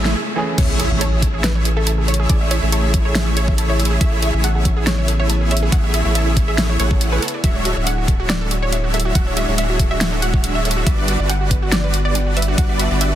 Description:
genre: future bass.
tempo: 140 BPM.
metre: 4/4.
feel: half-time.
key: A major.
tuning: A4 = 441 Hz.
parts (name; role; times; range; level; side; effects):
clear grand piano; accompaniment; 0.0-0.6 s; E3 to G#4; -27 LUFS; right 2 dB; none.
airy breathy pad; sustained chords; 0.2-13.2 s; C#3 to G#4; -31 LUFS; left 1 dB; chorus, sidechain pumping.
supersaw chords; riff; 0.0-13.2 s; G3 to F#5; -23 LUFS; equal; ensemble chorus, sidechain pumping.
saturated sub bass; bass; 0.0-13.2 s; D1 to A1; -19 LUFS; equal; sidechain pumping.
riser and impact; sound effects; 0.0-2.3 s; none; -26 LUFS; equal; none.
wide unison pluck; arpeggios; 0.1-13.2 s; F#4 to A5; -30 LUFS; right 4 dB; sidechain pumping, dub echo.
pop drum kit; drums; 0.1-13.1 s; crash cymbal, hi-hat, snare drum; -22 LUFS; equal; overdrive.
wide unison pluck; melody; 0.6-13.2 s; A4 to F#5; -26 LUFS; right 1 dB; sidechain pumping, dub echo.
electronic kick drum; drums; 0.6-12.7 s; none; -17 LUFS; equal; overdrive.
room: little or no reverb.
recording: dense, heavily limited modern master.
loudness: -15 LUFS.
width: side -12 dB against mid.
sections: 0.6-13.2 A section.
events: drum fill 0.0; break 0.2-0.6; drop 0.6-13.2; impact 0.6-2.3.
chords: 0.0 Amaj7; 7.2 Dmaj9#11; 10.9 Gmaj7.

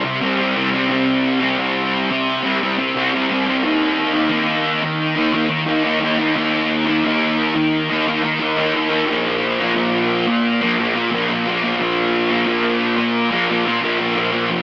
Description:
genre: rock.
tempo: 88 BPM.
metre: 4/4.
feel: straight.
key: unclear.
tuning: A4 = 442 Hz.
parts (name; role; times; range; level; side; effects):
thick fuzz guitar; solo; 0.0-14.6 s; F2 to Eb4; -15 LUFS; equal; distortion, lush chorus, analog delay.
room: wet huge ambient reverb, RT60 4.3 s.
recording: dreamy mix soaked in reverb, AM radio sound.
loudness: -15 LUFS.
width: side -20 dB against mid.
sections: 0.0-14.6 A section.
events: none.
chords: 0.0 C5; 3.6 Eb5; 9.1 Bb5.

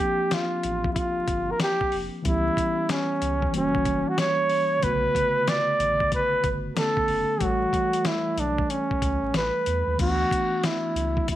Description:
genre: hip hop, jazz-hop.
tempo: 93 BPM.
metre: 4/4.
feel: swing 65% on 16ths.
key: D major.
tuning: A4 = 440 Hz.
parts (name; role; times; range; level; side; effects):
breathy flugelhorn; melody; 0.0-11.4 s; C#4 to D5; -24 LUFS; right 1 dB; slapback echo.
mellow tine electric piano; accompaniment; 0.0-11.4 s; C#3 to C#5; -30 LUFS; equal; medium stereo tremolo.
dusty soul sampler-style drum kit; drums; 0.3-11.4 s; crash cymbal, hi-hat, kick drum, snare drum; -29 LUFS; left 1 dB; none.
warm sub bass; bass; 0.6-11.2 s; F1 to E2; -30 LUFS; equal; none.
room: light reverb.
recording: 1960s-style stereo, vinyl crackle.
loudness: -22 LUFS.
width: side -13 dB against mid.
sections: 0.0-10.0 A section; 10.0-11.4 A section.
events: none.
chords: 0.0 Bb69; 2.3 C#m7b5; 3.5 F#7b9; 4.8 Bm9; 7.4 A7; 10.0 D69.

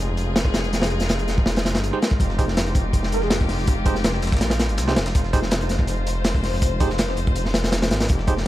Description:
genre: drum and bass, jungle.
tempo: 163 BPM.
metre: 4/4.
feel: straight.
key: F minor.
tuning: A4 = 437 Hz.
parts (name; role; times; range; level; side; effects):
warm chamber string section; sustained chords; 0.0-8.5 s; Ab3 to C5; -29 LUFS; left 2 dB; none.
detuned saw bass; bass; 0.0-8.5 s; F1 to C2; -24 LUFS; equal; none.
crunchy breakbeat drum kit; drums; 0.2-8.5 s; hi-hat, kick drum, snare drum; -21 LUFS; equal; none.
bell-like tine electric piano; stabs; 1.9-8.3 s; Eb4 to C5; -29 LUFS; right 5 dB; dub echo.
breakbeat sampler-style drum kit; drums; 2.2-8.5 s; hi-hat, snare drum; -35 LUFS; left 1 dB; high-pass filter on hats, high-pass filter on snare.
breathy flute-like synth lead; melody; 3.1-3.4 s; Ab4 to Bb4; -29 LUFS; right 3 dB; ensemble chorus, dub echo.
room: small room ambience.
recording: none.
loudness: -19 LUFS.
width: side -15 dB against mid.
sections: 0.0-8.5 A section.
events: none.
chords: 0.0 Fm9.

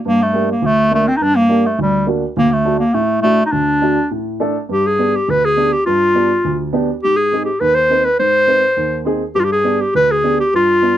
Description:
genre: klezmer.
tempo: 103 BPM.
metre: 2/4.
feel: straight.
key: G phrygian dominant from 4.7 s.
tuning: A4 = 440 Hz.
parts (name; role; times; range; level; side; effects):
clear clarinet; melody; 0.0-11.0 s; G3 to C5; -13 LUFS; equal; none.
dark upright piano; accompaniment; 0.1-11.0 s; D2 to B4; -19 LUFS; right 2 dB; none.
room: light reverb.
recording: close, detailed microphones.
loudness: -13 LUFS.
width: side -11 dB against mid.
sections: 0.0-4.7 A section; 4.7-11.0 B section.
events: none.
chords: 0.0 Gm; 2.4 D; 4.7 G; 7.0 Ab; 9.4 G.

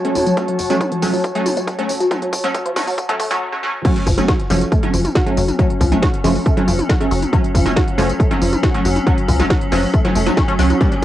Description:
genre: driving peak-time techno.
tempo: 138 BPM.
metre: 4/4.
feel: straight.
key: F# harmonic minor.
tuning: A4 = 436 Hz.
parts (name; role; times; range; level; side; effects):
resonant blip pluck; riff; 0.0-11.0 s; E#3 to F#4; -22 LUFS; left 1 dB; phaser, sidechain pumping, cassette tape, tape echo.
rave stab; stabs; 0.0-10.9 s; F#3 to D4; -21 LUFS; right 1 dB; chorus, built-in reverb, vintage 12-bit sampler grit, sidechain pumping, cassette tape, tape echo.
techno drum kit; drums; 0.0-11.0 s; crash cymbal, hi-hat, snare drum, tambourine, toms; -24 LUFS; left 1 dB; sidechain pumping on hats, cassette tape, sidechain pumping on toms, sidechain pumping on perc, sidechain pumping on cymbals.
airy breathy pad; texture; 0.0-3.4, 10.8-11.0 s; F#4 to A5; -23 LUFS; equal; chorus, sidechain pumping, cassette tape.
tight sequencer bass; bass; 0.2-11.0 s; F#1 to C#2; -19 LUFS; equal; tube saturation, sidechain pumping.
electronic kick drum; drums; 0.4-11.0 s; none; -17 LUFS; equal; high-pass filter on kick, cassette tape, high-pass filter on room.
swarming drone; drone; 4.7-11.0 s; F#3 to C#4; -24 LUFS; left 1 dB; built-in reverb, sidechain pumping, cassette tape.
room: light reverb, digital ambience.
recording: home recording on cassette, high-pass filter.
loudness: -14 LUFS.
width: side -13 dB against mid.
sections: 0.0-3.9 A section; 3.9-11.0 B section.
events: build-up 0.0-3.9; filter sweep on synth arpeggio sound 0.0-3.9; filter sweep 0.0-3.9; drum fill 0.4-3.4; break 3.4-3.9; drop 3.9-11.0.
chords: 0.0 F#m.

